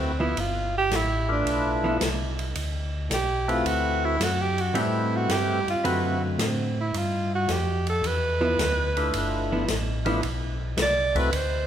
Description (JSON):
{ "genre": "soul jazz organ trio", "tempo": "110 BPM", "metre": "4/4", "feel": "swing 69% on 8ths", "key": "unclear", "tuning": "A4 = 437 Hz", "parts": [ { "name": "clear alto saxophone", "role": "melody", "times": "0.0-11.7 s", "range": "A3 to D5", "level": "-26 LUFS", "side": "right 2 dB", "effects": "none" }, { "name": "percussive tonewheel organ", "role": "melody", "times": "0.0-11.3 s", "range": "A3 to B4", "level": "-29 LUFS", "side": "left 2 dB", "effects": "slow rotary speaker" }, { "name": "mellow tonewheel organ", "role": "bass", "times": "0.0-11.7 s", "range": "G1 to A2", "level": "-28 LUFS", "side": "equal", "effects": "chorus vibrato, slow rotary speaker" }, { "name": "archtop guitar, miked and amplified", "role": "accompaniment", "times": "0.2-10.2 s", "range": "D3 to B4", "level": "-31 LUFS", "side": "right 1 dB", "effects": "none" }, { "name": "open jazz drum kit", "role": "drums", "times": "0.4-11.5 s", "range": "hi-hat, kick drum, ride cymbal, snare drum", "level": "-31 LUFS", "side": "equal", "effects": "none" } ], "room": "moderate church reverb, RT60 2.4 s", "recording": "recorded in a church or concert hall", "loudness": "-23 LUFS", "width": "side -10 dB against mid", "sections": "0.0-11.7 A section", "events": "alto saxophone solo 0.0-11.7", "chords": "0.4 G13; 2.6 D13; 4.8 Am7; 5.8 D13; 6.9 G13" }